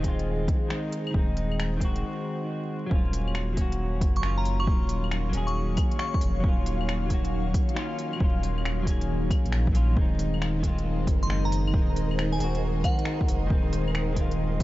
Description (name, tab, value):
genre	future garage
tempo	136 BPM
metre	4/4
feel	swing 66% on 16ths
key	Eb dorian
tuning	A4 = 440 Hz
part	clean electric guitar	accompaniment	0.0-14.6 s	Eb3 to Ab4	-32 LUFS	left 1 dB	analog chorus, sidechain pumping, tape echo
part	ethereal airy pad	sustained chords	0.0-14.6 s	Eb3 to F5	-34 LUFS	equal	ensemble chorus, built-in reverb, phaser, sidechain pumping
part	warm sub bass	bass	0.0-14.6 s	Eb1 to Bb1	-28 LUFS	equal	sidechain pumping
part	electronic kick drum	drums	0.0-14.6 s	none	-25 LUFS	equal	overdrive, vintage 12-bit sampler grit, small room ambience
part	organic electronic drum kit	drums	0.0-14.6 s	claves, finger snaps, hi-hat	-38 LUFS	left 1 dB	vintage 12-bit sampler grit, small room ambience
part	glassy synth bell	melody	4.2-6.2, 11.2-13.2 s	Gb5 to Db6	-36 LUFS	right 1 dB	chorus, phaser, analog delay
part	flickering grainy texture	texture	10.6-14.6 s	Bb4	-39 LUFS	right 4 dB	built-in reverb
room	little or no reverb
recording	vinyl crackle, nothing above 7.7 kHz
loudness	-24 LUFS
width	side -16 dB against mid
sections	0.0-2.9 A section; 2.9-14.6 B section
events	break 2.0-2.9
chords	0.0 Ab/Eb; 2.9 Ebm7; 10.0 Ab/Eb